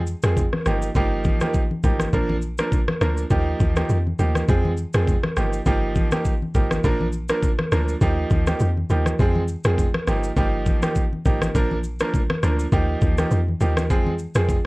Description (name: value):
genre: afrobeats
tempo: 102 BPM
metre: 4/4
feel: swing 55% on 16ths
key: Eb major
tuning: A4 = 439 Hz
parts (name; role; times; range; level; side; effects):
- deep log drum bass; bass; 0.0-14.6 s; G1 to F2; -22 LUFS; equal; none
- afro-pop drum kit; drums; 0.1-14.6 s; kick drum, rim click, shaker; -22 LUFS; equal; vintage 12-bit sampler grit
- bright concert grand piano; accompaniment; 0.2-14.6 s; F3 to Bb4; -25 LUFS; right 2 dB; none
- congas; percussion; 0.4-14.6 s; none; -29 LUFS; left 2 dB; none
room: light reverb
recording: worn, warbling old tape, cassette tape, warbly pitch drift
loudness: -19 LUFS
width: side -22 dB against mid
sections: 0.0-14.7 A section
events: none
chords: 0.0 Fm; 0.7 Ebadd9/G; 2.1 Bb; 3.3 Ebadd9; 4.5 Fm; 5.4 Ebadd9/G; 6.8 Bb; 8.0 Ebadd9; 9.2 Fm; 10.1 Ebadd9/G; 11.5 Bb; 12.7 Ebadd9; 13.9 Fm